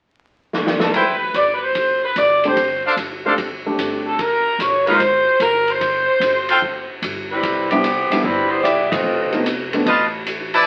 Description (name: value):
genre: jazz, big band swing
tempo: 148 BPM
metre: 4/4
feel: swing 67% on 8ths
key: C major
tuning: A4 = 440 Hz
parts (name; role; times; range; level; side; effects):
- swinging big-band drum kit; drums; 0.5-10.6 s; hi-hat, kick drum, ride cymbal, snare drum; -27 LUFS; equal; none
- clear saxophone section; melody; 0.8-9.4 s; E3 to Eb5; -19 LUFS; equal; none
- bright trumpet section; stabs; 0.9-6.6, 9.9-10.6 s; D4 to A5; -19 LUFS; equal; none
- upright bass; bass; 1.3-10.6 s; F1 to C2; -38 LUFS; equal; none
- warm grand piano; accompaniment; 2.5-5.0, 7.7-9.9 s; G3 to G4; -24 LUFS; equal; none
room: wet studio reverb, RT60 0.6 s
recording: very old 78 rpm record, vinyl crackle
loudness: -18 LUFS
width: mono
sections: 0.9-7.4 A section; 7.4-10.7 B section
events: drum fill 0.5-0.9; band accent 8.9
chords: 0.0 N.C.; 0.9 Cmaj7(no3); 2.6 F6 (rootless); 4.2 Db69 (rootless); 5.8 Gsus4; 7.4 Cmaj7; 9.1 F7#11